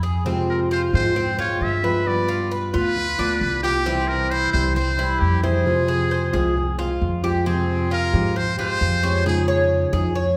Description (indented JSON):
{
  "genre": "latin",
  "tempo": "133 BPM",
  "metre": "4/4",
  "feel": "straight",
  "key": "F harmonic minor",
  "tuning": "A4 = 440 Hz",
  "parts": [
    { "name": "Cuban tres", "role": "arpeggios", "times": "0.0-10.4 s", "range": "C4 to Db5", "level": "-28 LUFS", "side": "equal", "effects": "none" },
    { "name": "upright bass", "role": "bass", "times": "0.0-10.3 s", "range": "C2 to Ab2", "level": "-26 LUFS", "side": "equal", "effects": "none" },
    { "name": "flamenco guitar", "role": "accompaniment", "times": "0.2-10.2 s", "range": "C3 to G4", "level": "-26 LUFS", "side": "equal", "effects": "none" },
    { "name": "trumpet with metal mute", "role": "melody", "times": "0.5-9.9 s", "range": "G4 to E5", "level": "-27 LUFS", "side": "equal", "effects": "none" }
  ],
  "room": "wet recital hall reverb, RT60 1.6 s",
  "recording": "recorded in a church or concert hall",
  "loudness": "-21 LUFS",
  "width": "mono",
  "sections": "0.0-7.5 A section; 7.5-10.4 B section",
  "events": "none",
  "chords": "0.3 Fm; 2.1 G7; 3.9 C; 5.7 Fm; 7.5 Fmadd9; 9.3 Dbadd9/F"
}